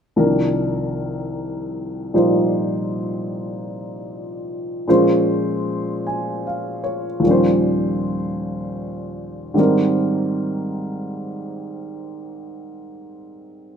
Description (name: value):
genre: jazz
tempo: 51 BPM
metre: 4/4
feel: swing 68% on 8ths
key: C minor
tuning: A4 = 440 Hz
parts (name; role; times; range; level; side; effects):
- warm upright piano; accompaniment; 0.2-13.8 s; C2 to Ab5; -19 LUFS; equal; none
room: wet large studio reverb, RT60 1.2 s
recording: minimal, uncompressed stereo recording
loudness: -18 LUFS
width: side -7 dB against mid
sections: 0.2-13.8 A section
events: none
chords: 0.2 Cm11; 4.9 Bbm7; 7.2 Eb13; 9.5 Abmaj7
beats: | 0.15 1.33 2.51 3.68 | 4.86 6.03 7.20 8.37 | 9.54 10.71 11.87 13.04